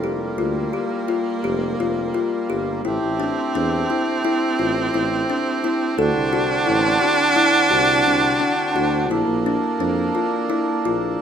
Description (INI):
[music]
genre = contemporary instrumental, chamber music in an uneven meter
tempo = 172 BPM (eighths)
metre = 9/8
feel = straight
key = A phrygian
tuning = A4 = 439 Hz
[part]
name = bright viola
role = second line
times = 0.0-11.2 s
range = Bb3 to D4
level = -21 LUFS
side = right 3 dB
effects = none
[part]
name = hand-pumped harmonium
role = sustained chords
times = 0.0-11.2 s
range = D3 to A4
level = -25 LUFS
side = right 1 dB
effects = none
[part]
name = kalimba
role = arpeggios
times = 0.0-11.1 s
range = D4 to A4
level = -23 LUFS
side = left 4 dB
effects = none
[part]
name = mellow tuba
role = bass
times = 0.0-11.2 s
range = F1 to F2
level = -27 LUFS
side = right 4 dB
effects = none
[sound]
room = moderate recital hall reverb, RT60 1.6 s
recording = none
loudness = -18 LUFS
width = side -8 dB against mid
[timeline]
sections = 0.0-11.2 A section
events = none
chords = 0.0 Gm7; 2.8 Am7; 6.0 D7; 9.1 Bbmaj7